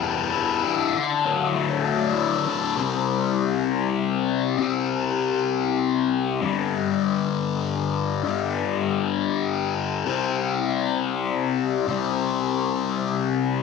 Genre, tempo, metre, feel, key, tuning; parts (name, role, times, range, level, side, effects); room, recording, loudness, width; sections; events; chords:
rock; 66 BPM (dotted quarters); 6/8; straight; A4 = 438 Hz
fuzz guitar; solo; 0.0-13.6 s; E2 to E4; -21 LUFS; left 8 dB; distortion, phaser, slapback echo
moderate plate reverb, RT60 2.4 s; -21 LUFS; side -4 dB against mid
0.0-2.8 A section; 2.8-13.6 B section
0.0 Em7; 0.9 Dadd9; 2.8 C5; 6.4 G5; 10.1 C5